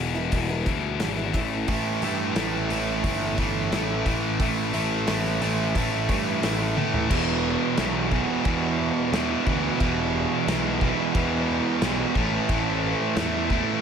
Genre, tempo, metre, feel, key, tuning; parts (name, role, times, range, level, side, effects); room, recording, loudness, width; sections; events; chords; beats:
quiet-loud alternative rock; 89 BPM; 4/4; straight; E minor; A4 = 437 Hz
picked steel-string acoustic guitar; arpeggios; 0.0-1.7 s; E2 to E4; -32 LUFS; right 3 dB
heavy high-gain guitar; riff; 0.0-13.8 s; E2 to A3; -27 LUFS; left 11 dB; distortion
fuzz picked electric bass; bass; 0.0-13.6 s; E1 to A2; -29 LUFS; equal; overdrive
loose indie drum kit; drums; 0.3-13.7 s; crash cymbal, hi-hat, kick drum, snare drum, toms; -29 LUFS; equal
cranked stack guitar; riff; 1.7-13.8 s; E2 to A3; -26 LUFS; right 11 dB; overdrive, spring reverb
light reverb, studio reverb; -22 LUFS; side -7 dB against mid
0.0-7.1 A section; 7.1-13.8 B section
drum fill 6.8-7.1
0.0 Em; 1.3 A5; 7.1 E5; 12.2 A5
0.33 1.01 | 1.69 2.37 3.04 3.72 | 4.40 5.08 5.76 6.43 | 7.11 7.78 8.46 9.13 | 9.80 10.48 11.15 11.82 | 12.49 13.17